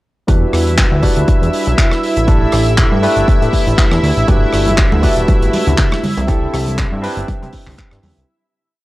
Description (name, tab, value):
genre	nu-disco, nu disco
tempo	120 BPM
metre	4/4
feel	swing 55% on 16ths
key	E minor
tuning	A4 = 440 Hz
part	barky tine electric piano	accompaniment	0.3-8.3 s	G3 to B4	-19 LUFS	equal	wide subtle chorus, tape echo
part	lush unison pad	sustained chords	0.3-8.3 s	E4 to E5	-20 LUFS	equal	chorus, sidechain pumping
part	fat analog bass	bass	0.3-8.2 s	D1 to C3	-16 LUFS	equal	none
part	damped 70s drum kit	drums	0.3-8.3 s	handclaps, hi-hat, rim click	-21 LUFS	equal	none
part	electronic kick drum	drums	0.3-7.9 s	none	-14 LUFS	equal	none
part	congas	percussion	4.3-8.1 s	none	-22 LUFS	right 1 dB	none
room	light reverb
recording	dry, gritty hardware recording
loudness	-11 LUFS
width	side -18 dB against mid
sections	0.3-8.3 drop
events	drop 0.3-8.3; fade-out 5.6-8.3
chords	0.3 Em7; 2.3 A7sus4; 4.3 Gmaj7; 6.0 Cmaj7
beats	| 0.28 0.78 1.28 1.78 | 2.28 2.78 3.28 3.78 | 4.28 4.78 5.28 5.78 | 6.28 6.78 7.28 7.78